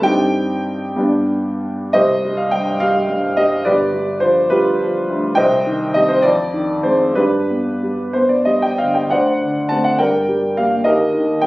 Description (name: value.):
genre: classical, romantic character piece for solo piano.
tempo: 60-72 BPM (dotted quarters).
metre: 6/8.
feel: rubato.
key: C minor.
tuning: A4 = 440 Hz.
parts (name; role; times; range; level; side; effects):
warm upright piano; solo; 0.0-11.5 s; G1 to A5; -14 LUFS; equal; none.
room: light reverb.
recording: recorded on a phone in the room, studio reverb.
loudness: -14 LUFS.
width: side -19 dB against mid.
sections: 0.0-2.0 A section; 2.0-11.5 B section.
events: none.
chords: 0.0 Cm/G; 1.0 G; 2.0 C5; 3.7 G7; 5.4 Cm; 6.3 Fm7; 7.2 G; 9.1 D7; 10.0 Gm; 10.8 Eb.